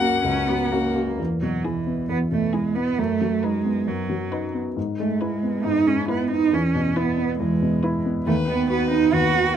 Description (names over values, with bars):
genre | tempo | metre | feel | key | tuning
quick classical-period movement for piano trio | 136 BPM | 4/4 | rubato | E major | A4 = 442 Hz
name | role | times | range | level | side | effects
rich violin | melody | 0.0-9.6 s | G#4 to F#5 | -28 LUFS | left 5 dB | none
rich cello | second line | 0.0-9.6 s | E3 to F#4 | -23 LUFS | right 6 dB | none
warm baby grand piano | accompaniment | 0.0-9.6 s | C#2 to F#4 | -24 LUFS | left 2 dB | none
room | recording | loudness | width
light reverb | close, detailed microphones | -20 LUFS | side -9 dB against mid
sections
0.0-1.2 A section; 1.2-9.6 B section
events
none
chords
0.0 F#; 1.2 E; 3.0 B7/F#; 4.8 E/G#; 6.5 E; 8.3 B/D#